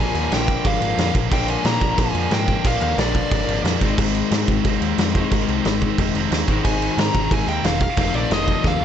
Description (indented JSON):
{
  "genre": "punk rock",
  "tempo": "180 BPM",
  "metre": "4/4",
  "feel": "straight",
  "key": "Bb mixolydian",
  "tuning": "A4 = 442 Hz",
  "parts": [
    { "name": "dark smooth lead guitar", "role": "melody", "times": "0.0-3.6, 6.6-8.8 s", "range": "D5 to Bb5", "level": "-25 LUFS", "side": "left 2 dB", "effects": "overdrive, digital delay" },
    { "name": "overdriven semi-hollow guitar", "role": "riff", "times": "0.0-8.8 s", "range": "F2 to Eb4", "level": "-24 LUFS", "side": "left 11 dB", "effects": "none" },
    { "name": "tight distorted guitar", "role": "riff", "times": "0.0-8.8 s", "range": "Ab2 to F4", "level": "-26 LUFS", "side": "right 13 dB", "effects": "distortion" },
    { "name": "growling picked electric bass", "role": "bass", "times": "0.0-8.8 s", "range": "E1 to Bb2", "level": "-24 LUFS", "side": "right 1 dB", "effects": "overdrive" },
    { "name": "loose indie drum kit", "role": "drums", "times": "0.2-8.7 s", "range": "crash cymbal, kick drum, snare drum", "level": "-22 LUFS", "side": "right 1 dB", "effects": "none" }
  ],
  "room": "little or no reverb",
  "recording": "nothing above 8.0 kHz",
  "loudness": "-17 LUFS",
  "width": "side -9 dB against mid",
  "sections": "0.0-8.8 A section",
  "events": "drum fill 8.6",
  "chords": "0.0 Bb; 3.8 Ab; 8.0 F7"
}